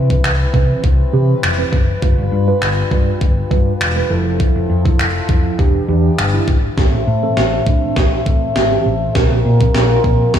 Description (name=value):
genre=dance-pop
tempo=101 BPM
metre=4/4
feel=straight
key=A minor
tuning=A4 = 444 Hz
part: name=warm brass ensemble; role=sustained chords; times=0.0-10.4 s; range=C3 to E5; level=-22 LUFS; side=left 5 dB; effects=sidechain pumping
part: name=hollow-body short-scale fingered electric bass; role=bass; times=0.0-10.4 s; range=E1 to C3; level=-16 LUFS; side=equal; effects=sidechain pumping
part: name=mellow tine electric piano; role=accompaniment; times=0.1-10.3 s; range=E3 to B4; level=-21 LUFS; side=right 6 dB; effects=medium stereo tremolo, sidechain pumping
part: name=gated 80s digital drum machine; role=drums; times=0.1-10.4 s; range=finger snaps, kick drum, snare drum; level=-16 LUFS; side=equal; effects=gated reverb, gated reverb snare, overdrive
room=light reverb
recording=small room ambience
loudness=-12 LUFS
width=side -9 dB against mid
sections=0.0-6.8 A section; 6.8-10.4 B section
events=build-up 6.8-10.4; drum fill 6.8-10.4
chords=0.0 Cmaj7; 2.0 G7; 4.1 Fmaj7; 5.6 Em7; 6.8 Am; 9.2 Bbsus2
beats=0.24 0.84 1.43 | 2.02 2.62 3.21 3.81 | 4.40 4.99 5.59 6.18 | 6.78 7.37 7.96 8.56 | 9.15 9.75 10.34